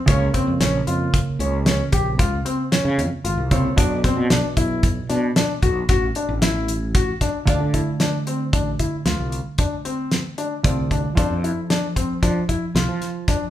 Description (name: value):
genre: progressive instrumental, band music in an uneven meter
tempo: 114 BPM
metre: 7/4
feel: straight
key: unclear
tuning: A4 = 439 Hz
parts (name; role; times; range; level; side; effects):
- hollow-body jazz guitar; accompaniment; 0.0-13.5 s; B2 to D5; -26 LUFS; right 2 dB; none
- warm grand piano; arpeggios; 0.1-13.4 s; C4 to G4; -25 LUFS; left 3 dB; none
- fretless electric bass; bass; 0.1-13.4 s; G#1 to F3; -24 LUFS; equal; none
- damped 70s drum kit; drums; 0.1-13.4 s; hi-hat, kick drum, snare drum; -21 LUFS; equal; none
room: moderate large studio reverb, RT60 0.9 s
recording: band playing live in one room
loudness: -18 LUFS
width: side -12 dB against mid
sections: 0.0-7.5 A section; 7.5-13.5 B section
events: none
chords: 0.1 C#6; 3.8 Bm; 7.5 Dm; 11.2 F